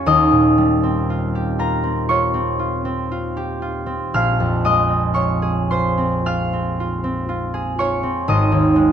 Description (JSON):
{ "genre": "classical, solo harp piece", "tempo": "51-62 BPM", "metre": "4/4", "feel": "rubato", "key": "Bb dorian", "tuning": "A4 = 440 Hz", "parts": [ { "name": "concert harp", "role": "solo", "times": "0.0-8.9 s", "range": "Ab1 to F6", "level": "-16 LUFS", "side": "equal", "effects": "none" } ], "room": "moderate concert hall reverb, RT60 2.2 s", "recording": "close, detailed microphones", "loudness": "-17 LUFS", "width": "side -8 dB against mid", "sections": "0.0-8.9 A section", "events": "none", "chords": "0.1 Eb13; 4.1 Bbm9; 8.3 Ab6" }